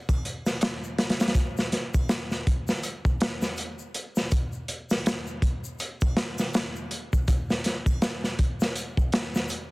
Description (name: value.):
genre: trip hop.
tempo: 81 BPM.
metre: 4/4.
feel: swing 59% on 16ths.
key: none.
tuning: none.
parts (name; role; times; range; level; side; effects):
crunchy breakbeat drum kit; drums; 0.1-9.7 s; hi-hat, kick drum, snare drum; -24 LUFS; equal; none.
triangle and tube shaker; percussion; 0.1-9.7 s; none; -45 LUFS; left 1 dB; none.
room: light reverb.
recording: dense, heavily limited modern master, vinyl crackle.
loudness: -25 LUFS.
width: side -24 dB against mid.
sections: 0.0-9.7 A section.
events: none.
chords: none.